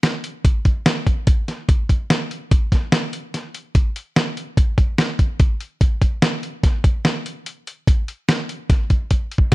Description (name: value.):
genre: progressive instrumental, progressive.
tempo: 146 BPM.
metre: 5/4.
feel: straight.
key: none.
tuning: none.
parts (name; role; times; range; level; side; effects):
dusty soul sampler-style drum kit; drums; 0.0-9.5 s; hi-hat, kick drum, snare drum; -16 LUFS; equal; none.
room: light reverb.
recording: dark, warm production.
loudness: -17 LUFS.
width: side -20 dB against mid.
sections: 0.0-9.5 A section.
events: drum fill 9.1-9.5.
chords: none.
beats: 0.04 0.45 0.86 1.28 | 1.69 2.10 2.51 2.92 3.34 | 3.75 4.16 4.57 4.99 5.40 | 5.81 6.22 6.63 7.05 7.46 | 7.87 8.28 8.70 9.11 9.52.